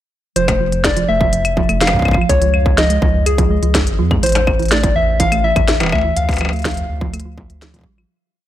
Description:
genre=IDM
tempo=124 BPM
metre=4/4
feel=straight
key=unclear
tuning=A4 = 440 Hz
part: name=soft struck synth lead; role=melody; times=0.4-7.6 s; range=Ab4 to F5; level=-18 LUFS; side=left 2 dB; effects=chorus, ping-pong delay
part: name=thumb-piano-like synth pluck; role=arpeggios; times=0.4-8.1 s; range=E2 to A3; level=-21 LUFS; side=right 5 dB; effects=chorus, digital delay
part: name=round analog bass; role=bass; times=0.4-8.1 s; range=E1 to F2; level=-18 LUFS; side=equal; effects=none
part: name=industrial drum kit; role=drums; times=0.4-8.1 s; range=claves, hi-hat, snare drum, struck metal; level=-20 LUFS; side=left 1 dB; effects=none
part: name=electronic kick drum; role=drums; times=0.5-7.9 s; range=none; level=-19 LUFS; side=equal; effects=distortion
room=light reverb, digital ambience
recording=none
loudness=-13 LUFS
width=side -12 dB against mid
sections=0.4-8.1 groove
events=filter sweep on synth arpeggio sound 0.4-8.1; fade-out 5.5-8.1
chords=0.4 Fmaj7; 2.3 Dbadd9; 4.2 Asus4; 6.2 Dm

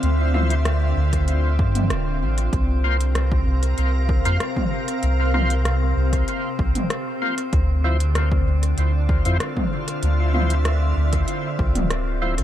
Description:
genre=ambient dub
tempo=96 BPM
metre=4/4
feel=straight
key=D minor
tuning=A4 = 440 Hz
part: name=soft additive organ-like pad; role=sustained chords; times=0.0-12.4 s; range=C3 to F5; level=-27 LUFS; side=equal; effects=ensemble chorus, built-in reverb
part: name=soft dub sub bass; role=bass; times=0.0-12.4 s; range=D1 to G2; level=-20 LUFS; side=equal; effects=none
part: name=organic electronic drum kit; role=drums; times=0.0-12.4 s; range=hi-hat, rim click, toms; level=-28 LUFS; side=equal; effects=dub echo
part: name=drifting glass-harmonics texture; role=texture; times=0.0-12.4 s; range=C4 to C5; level=-32 LUFS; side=left 1 dB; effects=chorus, built-in reverb
part: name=overdriven tonewheel organ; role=stabs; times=0.3-12.3 s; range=F3 to C5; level=-29 LUFS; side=left 2 dB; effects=chorus vibrato, slow rotary speaker, dub echo
part: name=electronic kick drum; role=drums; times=1.1-11.7 s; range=none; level=-24 LUFS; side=equal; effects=overdrive
room=light reverb, digital ambience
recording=none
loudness=-18 LUFS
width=side -12 dB against mid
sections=0.0-12.4 A section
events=none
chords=0.0 Dm9; 2.5 C7sus4; 7.5 Dm9

